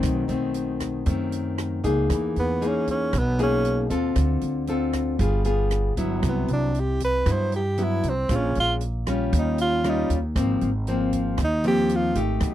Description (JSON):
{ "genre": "bossa nova", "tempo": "116 BPM", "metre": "4/4", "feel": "straight", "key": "unclear", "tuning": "A4 = 441 Hz", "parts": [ { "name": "nylon-string guitar", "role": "accompaniment", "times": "0.0-12.5 s", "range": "F#2 to A4", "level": "-25 LUFS", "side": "left 2 dB", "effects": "none" }, { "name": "upright bass", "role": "bass", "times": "0.0-12.5 s", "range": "G1 to G2", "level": "-26 LUFS", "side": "right 1 dB", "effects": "none" }, { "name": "open jazz drum kit", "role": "drums", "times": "0.0-12.5 s", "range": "hi-hat, kick drum, rim click", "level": "-29 LUFS", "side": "right 1 dB", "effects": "none" }, { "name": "breathy tenor saxophone", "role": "melody", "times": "2.4-12.2 s", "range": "B3 to C5", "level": "-25 LUFS", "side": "right 2 dB", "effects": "none" } ], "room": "little or no reverb", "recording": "dry, close 1970s-style studio recording", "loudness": "-21 LUFS", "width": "side -12 dB against mid", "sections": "0.0-12.5 A section", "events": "tenor saxophone solo 0.0-12.5", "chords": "0.0 B7b9; 2.1 Emaj7#11; 4.2 Dm7; 5.2 G7b9; 6.2 Cmaj7#11; 8.3 Bbm7; 9.3 Eb9; 10.4 Ab69" }